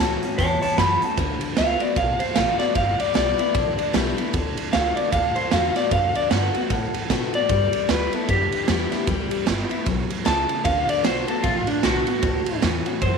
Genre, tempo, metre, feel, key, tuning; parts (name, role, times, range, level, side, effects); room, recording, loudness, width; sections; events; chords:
rockabilly; 152 BPM; 4/4; swing 60% on 8ths; D major; A4 = 440 Hz
electric guitar through a small old amp; melody; 0.0-13.2 s; D4 to B5; -23 LUFS; left 1 dB; spring reverb, tape echo
picked steel-string acoustic guitar; accompaniment; 0.0-13.2 s; E2 to F#4; -27 LUFS; left 12 dB
upright bass; bass; 0.0-13.2 s; G1 to B2; -27 LUFS; equal
raw garage drum kit; drums; 0.2-13.1 s; hi-hat, kick drum, ride cymbal, snare drum; -25 LUFS; right 6 dB
light reverb, studio ambience; 1960s-style stereo with parts hard left and right; -19 LUFS; side -5 dB against mid
0.0-1.2 A section; 1.2-13.2 A section
0.0 A6; 1.2 D6; 2.8 G6; 4.3 D6; 7.5 G6; 10.7 D6; 12.2 A6